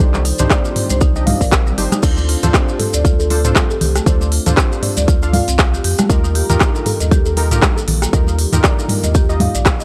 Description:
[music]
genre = afro house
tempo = 118 BPM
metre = 4/4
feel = swing 56% on 16ths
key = D phrygian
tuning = A4 = 440 Hz
[part]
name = dark analog pad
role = sustained chords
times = 0.0-9.8 s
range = Eb3 to D5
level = -32 LUFS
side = equal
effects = none
[part]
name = warm analog keys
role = stabs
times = 0.0-9.5 s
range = D4 to F5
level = -26 LUFS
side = equal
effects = chorus, sidechain pumping, analog delay
[part]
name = warm sub bass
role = bass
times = 0.0-9.8 s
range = G1 to F2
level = -20 LUFS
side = equal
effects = tube saturation, sidechain pumping
[part]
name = afro-pop drum kit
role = drums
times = 0.0-9.8 s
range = crash cymbal, handclaps, hi-hat, rim click, toms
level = -21 LUFS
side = equal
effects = none
[part]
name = maracas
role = percussion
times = 0.0-9.8 s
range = none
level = -29 LUFS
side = equal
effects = none
[part]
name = marimba with medium mallets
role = arpeggios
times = 0.1-9.8 s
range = G3 to Eb5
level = -29 LUFS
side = equal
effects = sidechain pumping, analog delay
[part]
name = congas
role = percussion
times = 0.1-9.8 s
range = none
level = -24 LUFS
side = equal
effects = none
[part]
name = buzzing kalimba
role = melody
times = 0.5-9.8 s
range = A4 to F5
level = -29 LUFS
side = equal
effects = analog delay
[part]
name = electronic kick drum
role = drums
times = 0.5-9.8 s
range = none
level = -17 LUFS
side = equal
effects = none
[sound]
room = small room ambience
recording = dry, gritty hardware recording, transformer saturation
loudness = -15 LUFS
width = mono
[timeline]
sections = 0.0-9.8 A section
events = none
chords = 0.0 Cmadd9; 2.0 Dm7; 6.1 Ebadd9

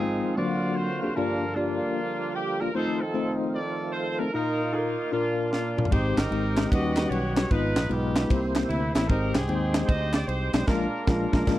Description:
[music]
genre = uptempo gospel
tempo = 151 BPM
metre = 4/4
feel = swing 65% on 8ths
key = unclear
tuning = A4 = 438 Hz
[part]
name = clear horn section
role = melody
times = 0.0-11.6 s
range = Bb3 to Eb5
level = -30 LUFS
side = equal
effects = none
[part]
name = bell-like tine electric piano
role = accompaniment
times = 0.0-11.6 s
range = G2 to G5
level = -27 LUFS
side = left 2 dB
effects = medium stereo tremolo
[part]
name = tonewheel organ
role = sustained chords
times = 0.0-11.6 s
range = D3 to G5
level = -34 LUFS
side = right 4 dB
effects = overdrive, chorus vibrato, slow rotary speaker
[part]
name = crisp fusion drum kit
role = drums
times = 5.5-11.6 s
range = crash cymbal, kick drum, ride cymbal, snare drum, toms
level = -25 LUFS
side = right 1 dB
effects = none
[part]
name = fingered electric bass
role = bass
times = 5.9-11.6 s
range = G1 to Eb2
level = -29 LUFS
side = equal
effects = none
[part]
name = group handclap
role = percussion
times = 6.2-10.6 s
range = none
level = -38 LUFS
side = left 3 dB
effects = none
[sound]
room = light reverb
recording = dry, close 1970s-style studio recording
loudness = -23 LUFS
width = side -14 dB against mid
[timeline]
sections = 0.0-11.6 A section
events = drum fill 5.5-5.9; band accent 10.7-11.6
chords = 0.4 D7alt; 1.2 Gm7; 2.7 F7; 4.3 Bbsus4; 5.1 Bb; 5.9 Abmaj7; 6.7 Eb7alt; 7.5 Abm6; 8.3 C7; 9.1 Abmaj7; 10.7 Bb7

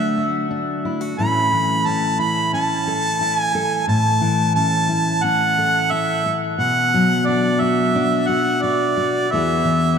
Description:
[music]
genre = acoustic folk duo or small band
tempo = 89 BPM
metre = 4/4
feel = straight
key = unclear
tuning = A4 = 437 Hz
[part]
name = warm harmonica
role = melody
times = 0.0-10.0 s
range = D5 to B5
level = -19 LUFS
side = right 2 dB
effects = none
[part]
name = fingerpicked steel-string acoustic guitar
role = accompaniment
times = 0.0-10.0 s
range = E2 to A4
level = -20 LUFS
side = left 2 dB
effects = none
[sound]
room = wet cathedral reverb, RT60 5.2 s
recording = in a vast, echoing space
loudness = -16 LUFS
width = side -6 dB against mid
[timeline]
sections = 0.0-10.0 A section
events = none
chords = 0.0 D; 1.2 A; 6.6 Bm; 9.3 E

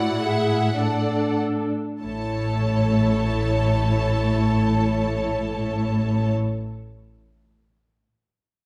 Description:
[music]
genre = classical, slow romantic movement for symphony orchestra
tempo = 45-58 BPM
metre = 3/4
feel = rubato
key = A major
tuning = A4 = 441 Hz
[part]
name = warm symphonic violin section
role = melody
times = 0.0-6.3 s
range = F#5 to A5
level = -34 LUFS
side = equal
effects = none
[part]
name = warm symphonic violin section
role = second line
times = 0.0-6.3 s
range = A4 to E5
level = -31 LUFS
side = equal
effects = none
[part]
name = warm symphonic viola section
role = accompaniment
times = 0.0-6.3 s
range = A3 to A4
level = -29 LUFS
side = equal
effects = none
[part]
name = warm symphonic cello section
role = bass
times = 0.0-6.3 s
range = A2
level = -29 LUFS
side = equal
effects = none
[part]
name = warm symphonic double bass section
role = bass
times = 2.0-6.3 s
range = A1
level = -26 LUFS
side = equal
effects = none
[sound]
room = wet stone room reverb, RT60 1.3 s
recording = none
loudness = -23 LUFS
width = mono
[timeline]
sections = 0.0-2.0 A section; 2.0-5.6 B section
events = slowing down 0.0-2.0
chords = 0.0 D/A; 2.0 A

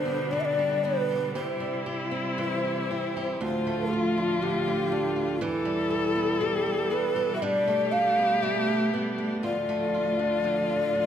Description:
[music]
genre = celtic folk, Celtic slow air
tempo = 59 BPM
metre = 4/4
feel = rubato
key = D dorian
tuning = A4 = 440 Hz
[part]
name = breathy mellow long shakuhachi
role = melody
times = 0.0-11.1 s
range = E4 to F5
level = -27 LUFS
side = left 1 dB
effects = none
[part]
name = warm viola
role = second line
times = 0.0-11.1 s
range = D4 to A4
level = -31 LUFS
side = left 5 dB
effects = none
[part]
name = picked swing-style acoustic guitar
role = accompaniment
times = 0.0-11.1 s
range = D2 to G4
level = -31 LUFS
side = right 3 dB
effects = none
[part]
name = clear studio string section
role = sustained chords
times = 0.0-11.1 s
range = D2 to E4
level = -34 LUFS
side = right 1 dB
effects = none
[sound]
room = moderate recital hall reverb, RT60 1.8 s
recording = none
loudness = -24 LUFS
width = side -9 dB against mid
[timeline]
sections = 0.0-11.1 A section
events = none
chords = 0.0 G; 1.4 C; 3.4 Dm; 5.4 Em; 7.4 Gadd9; 9.4 Dm

